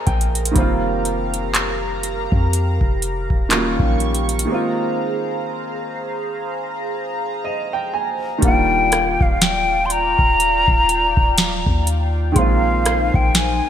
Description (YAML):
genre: contemporary R&B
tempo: 61 BPM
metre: 4/4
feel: swing 58% on 16ths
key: Eb major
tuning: A4 = 437 Hz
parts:
  - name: warm baby grand piano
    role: accompaniment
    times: 0.0-13.7 s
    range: Eb3 to Ab5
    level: -23 LUFS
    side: right 2 dB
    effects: wide subtle chorus
  - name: chorused pulse-width pad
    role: sustained chords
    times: 0.0-13.7 s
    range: Eb4 to Bb5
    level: -26 LUFS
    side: equal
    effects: phaser
  - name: clean 808-style bass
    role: bass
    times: 0.1-13.6 s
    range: Eb1 to F2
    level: -22 LUFS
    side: equal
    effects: none
  - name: booming analog drum machine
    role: drums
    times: 0.1-13.6 s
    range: handclaps, hi-hat, kick drum, rim click, snare drum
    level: -19 LUFS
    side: equal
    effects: gated reverb
  - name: hollow concert flute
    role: melody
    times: 8.4-13.7 s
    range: F5 to C6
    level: -18 LUFS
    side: left 2 dB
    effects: digital delay
  - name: celesta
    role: texture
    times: 8.9-13.7 s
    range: F5 to C6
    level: -32 LUFS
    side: left 1 dB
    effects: none
room: moderate lush hall reverb, RT60 2.7 s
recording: bright 1980s-style digital production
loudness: -16 LUFS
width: side -9 dB against mid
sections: 0.0-8.4 A section; 8.4-13.7 B section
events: grand piano fill 0.0-0.6, 7.0-8.4; break 4.5-8.4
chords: 0.0 Bb9sus4; 0.6 F9sus4; 3.5 Eb9; 4.5 Ab69; 8.4 Ebmaj9; 12.4 Bb9sus4